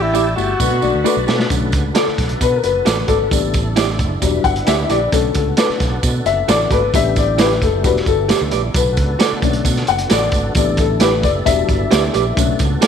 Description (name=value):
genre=uptempo 1960s-style soul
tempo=133 BPM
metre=4/4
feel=straight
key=B minor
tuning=A4 = 439 Hz
part: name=breathy tenor saxophone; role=melody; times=0.0-1.2 s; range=E4 to F#4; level=-21 LUFS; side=left 2 dB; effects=slapback echo
part: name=clear saxophone section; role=second line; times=0.0-1.3 s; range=D3 to G4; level=-27 LUFS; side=right 11 dB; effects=none
part: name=dark upright piano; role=accompaniment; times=0.0-12.9 s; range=A2 to F#5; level=-18 LUFS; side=left 10 dB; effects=none
part: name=tonewheel organ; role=sustained chords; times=0.0-12.9 s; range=D3 to B5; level=-27 LUFS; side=right 1 dB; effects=slow rotary speaker, chorus vibrato
part: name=fingered electric bass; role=bass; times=0.0-12.8 s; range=E1 to B2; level=-21 LUFS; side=right 1 dB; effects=none
part: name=electric guitar through a small old amp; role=stabs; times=0.1-12.9 s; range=E4 to D5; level=-22 LUFS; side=right 12 dB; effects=slapback echo
part: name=tambourine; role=percussion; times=0.1-12.9 s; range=none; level=-28 LUFS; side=right 14 dB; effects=none
part: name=crunchy breakbeat drum kit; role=drums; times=0.6-12.9 s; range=hi-hat, kick drum, snare drum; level=-18 LUFS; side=right 1 dB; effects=none
room=light reverb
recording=1960s-style stereo with parts hard left and right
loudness=-14 LUFS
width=side -8 dB against mid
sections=0.0-1.5 A section; 1.5-12.9 B section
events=drum fill 0.0-1.5; upright piano solo 1.5-12.9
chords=0.0 A7sus4; 0.6 Bm7; 3.3 A7sus4; 4.2 Em7; 5.1 Bm7; 6.9 A7sus4; 7.8 Em7; 8.8 Bm7; 10.6 A7sus4; 11.5 Em7; 12.4 Bm7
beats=0.15 0.60 1.05 | 1.51 1.96 2.41 2.86 | 3.32 3.77 4.22 4.68 | 5.13 5.58 6.03 6.49 | 6.94 7.39 7.84 8.30 | 8.75 9.20 9.65 10.11 | 10.56 11.01 11.46 11.92 | 12.37 12.82